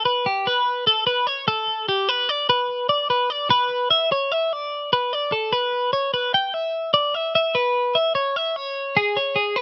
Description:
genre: rock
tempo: 148 BPM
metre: 5/4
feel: straight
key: unclear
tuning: A4 = 439 Hz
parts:
  - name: twelve-string electric guitar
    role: solo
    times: 0.0-9.6 s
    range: G4 to G5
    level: -18 LUFS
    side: equal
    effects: none
room: little or no reverb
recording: recorded outdoors, with no room sound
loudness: -18 LUFS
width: side -28 dB against mid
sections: 0.0-3.5 A section; 3.5-9.6 B section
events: none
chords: none

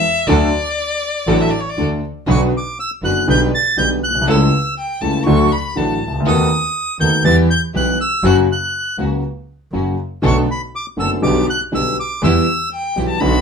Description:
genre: tango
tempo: 121 BPM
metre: 4/4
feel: rubato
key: B minor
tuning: A4 = 444 Hz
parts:
  - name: warm violin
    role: second line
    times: 0.0-1.8, 4.8-6.1, 12.7-13.4 s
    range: C#5 to C#6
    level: -20 LUFS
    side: left 2 dB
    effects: none
  - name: warm concert grand piano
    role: accompaniment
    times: 0.3-13.4 s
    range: F#1 to A4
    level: -17 LUFS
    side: equal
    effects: none
  - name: warm symphonic string section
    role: stabs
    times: 0.3-13.4 s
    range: A#3 to B4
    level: -25 LUFS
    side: equal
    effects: none
  - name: clear double bass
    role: bass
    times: 0.3-13.4 s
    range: F#1 to E2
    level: -20 LUFS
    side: equal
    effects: none
  - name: bandoneon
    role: melody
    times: 2.3-12.7 s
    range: B5 to A6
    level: -19 LUFS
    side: right 1 dB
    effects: none
room: wet studio reverb, RT60 0.5 s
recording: band playing live in one room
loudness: -14 LUFS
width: side -6 dB against mid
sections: 0.0-2.3 A section; 2.3-13.4 B section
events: violin solo 0.0-2.3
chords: 0.3 D; 2.3 Bm; 3.3 G/B; 4.3 A7/C#; 5.3 D; 6.3 B7/D#; 7.2 Em; 8.2 F#; 10.2 Bm7; 11.2 G/B; 12.2 Em

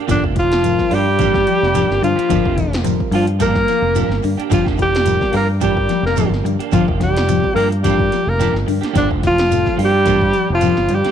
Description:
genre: afrobeat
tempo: 108 BPM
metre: 4/4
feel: swing 55% on 16ths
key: G dorian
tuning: A4 = 438 Hz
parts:
  - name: semi-hollow electric guitar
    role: stabs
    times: 0.0-11.1 s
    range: F3 to G4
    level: -26 LUFS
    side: right 12 dB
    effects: ensemble chorus
  - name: bright alto saxophone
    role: melody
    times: 0.1-11.1 s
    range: D4 to Bb4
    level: -18 LUFS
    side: equal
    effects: none
  - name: bright trombone section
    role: second line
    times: 0.1-11.1 s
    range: D3 to Bb3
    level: -27 LUFS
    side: left 12 dB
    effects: none
  - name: warm trombone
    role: second line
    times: 0.1-11.1 s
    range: D3 to Bb3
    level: -26 LUFS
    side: right 11 dB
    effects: tape echo
  - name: barky reed electric piano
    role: accompaniment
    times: 0.1-10.9 s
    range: G3 to C5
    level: -30 LUFS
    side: right 12 dB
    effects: overdrive, spring reverb
  - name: clean electric guitar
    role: arpeggios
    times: 0.1-11.1 s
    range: D3 to G3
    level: -23 LUFS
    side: left 12 dB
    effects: phaser, tape echo
  - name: fingered electric bass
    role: bass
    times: 0.1-11.1 s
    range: F1 to G2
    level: -20 LUFS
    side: equal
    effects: none
  - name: 80s electronic pad drums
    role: drums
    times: 0.1-11.1 s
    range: hi-hat, kick drum, snare drum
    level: -23 LUFS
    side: equal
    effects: none
  - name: shekere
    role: percussion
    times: 0.1-11.0 s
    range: none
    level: -26 LUFS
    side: right 6 dB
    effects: none
room: light reverb, studio reverb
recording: 1960s-style stereo with parts hard left and right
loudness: -14 LUFS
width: side -9 dB against mid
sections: 0.0-11.1 A section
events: none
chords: 0.0 Gm7

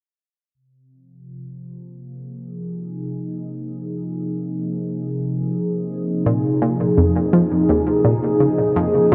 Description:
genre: ambient, sequencer-driven space music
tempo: 84 BPM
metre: 4/4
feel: straight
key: unclear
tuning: A4 = 440 Hz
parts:
  - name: phased analog pad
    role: sustained chords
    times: 1.3-9.1 s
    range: C3 to Ab4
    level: -23 LUFS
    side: equal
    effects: phaser, chorus, tremolo
  - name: analog pluck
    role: riff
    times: 6.3-9.1 s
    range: Eb2 to F3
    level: -21 LUFS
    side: equal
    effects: chorus, tape echo
room: wet huge ambient reverb, RT60 7.5 s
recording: in a vast, echoing space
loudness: -20 LUFS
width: mono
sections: 0.5-9.1 A section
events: filter sweep on analog synth pad 0.5-9.1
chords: 0.5 Bbsus2

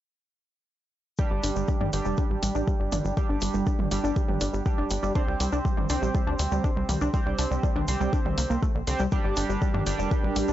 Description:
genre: melodic techno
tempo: 121 BPM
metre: 4/4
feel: straight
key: G minor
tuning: A4 = 440 Hz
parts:
  - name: tight sequenced synth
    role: arpeggios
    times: 1.2-10.5 s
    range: D3 to D4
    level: -30 LUFS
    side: right 1 dB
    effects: chorus, sidechain pumping, analog delay
  - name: sync-sweep polysynth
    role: stabs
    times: 1.2-10.5 s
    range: G3 to C5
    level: -32 LUFS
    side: right 3 dB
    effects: chorus, cassette tape, sidechain pumping, analog delay
  - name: electronic kick drum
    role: drums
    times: 1.2-10.2 s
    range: none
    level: -26 LUFS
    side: equal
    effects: none
  - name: egg shaker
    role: percussion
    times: 1.2-10.5 s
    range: none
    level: -44 LUFS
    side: left 5 dB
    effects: none
  - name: tight sequencer bass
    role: bass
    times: 1.3-10.5 s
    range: F1 to G2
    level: -29 LUFS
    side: equal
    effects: tube saturation, sidechain pumping
  - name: punchy analog drum machine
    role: drums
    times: 1.4-10.5 s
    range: hi-hat, toms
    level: -32 LUFS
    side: left 1 dB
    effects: overdrive, sidechain pumping on hats, sidechain pumping on toms
  - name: dark analog pad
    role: sustained chords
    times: 9.8-10.5 s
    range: D4 to Bb4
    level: -33 LUFS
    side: right 3 dB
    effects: chorus, phaser, sidechain pumping
room: digital ambience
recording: dry, gritty hardware recording, transformer saturation, nothing above 7.8 kHz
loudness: -24 LUFS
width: side -13 dB against mid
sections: 1.2-10.5 A section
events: none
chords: 1.2 G5; 5.2 C5; 9.1 Gm

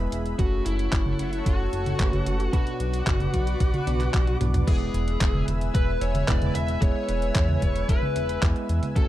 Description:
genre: italo disco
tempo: 112 BPM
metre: 4/4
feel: straight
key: unclear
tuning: A4 = 440 Hz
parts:
  - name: lush unison pad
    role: sustained chords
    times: 0.0-9.1 s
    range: G#4 to E6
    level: -35 LUFS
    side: left 2 dB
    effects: chorus
  - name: bell-like tine electric piano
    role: stabs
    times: 0.0-9.1 s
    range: B2 to D5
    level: -32 LUFS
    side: right 3 dB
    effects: medium stereo tremolo
  - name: chorused synth bass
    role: bass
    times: 0.0-9.1 s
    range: E1 to E2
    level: -26 LUFS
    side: equal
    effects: none
  - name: detuned 8-bit digital drum machine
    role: drums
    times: 0.1-9.1 s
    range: congas, crash cymbal, handclaps, hi-hat, toms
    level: -30 LUFS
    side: right 1 dB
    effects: overdrive
  - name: high-gain lead guitar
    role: melody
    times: 0.4-9.1 s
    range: E4 to E5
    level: -30 LUFS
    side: left 2 dB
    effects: distortion, ping-pong delay
  - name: electronic kick drum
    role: drums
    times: 0.4-9.1 s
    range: none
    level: -23 LUFS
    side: equal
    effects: overdrive
room: light reverb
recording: dark, warm production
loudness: -22 LUFS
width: side -14 dB against mid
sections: 0.0-4.7 A section; 4.7-9.1 B section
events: drum fill 4.3-4.7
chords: 0.4 F#m; 2.5 Bm; 4.7 E

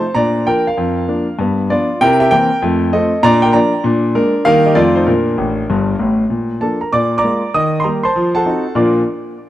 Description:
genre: jazz, stride piano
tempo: 195 BPM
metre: 4/4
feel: swing 63% on 8ths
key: Bb major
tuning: A4 = 438 Hz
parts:
  - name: clear concert grand piano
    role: solo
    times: 0.0-9.0 s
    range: G1 to Eb6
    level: -12 LUFS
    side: equal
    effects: tape echo
room: light reverb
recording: dry, close 1970s-style studio recording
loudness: -12 LUFS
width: side -13 dB against mid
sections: 0.0-6.3 A section; 6.3-8.8 B section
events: grand piano fill 5.4-6.3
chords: 0.2 Bb; 1.4 G7; 2.0 C7; 2.6 F7; 3.2 Bb; 3.8 Bb7; 4.5 Eb; 4.8 F7; 5.1 Bb; 6.9 Bb7; 7.5 Eb; 8.2 F7b9; 8.8 Bb

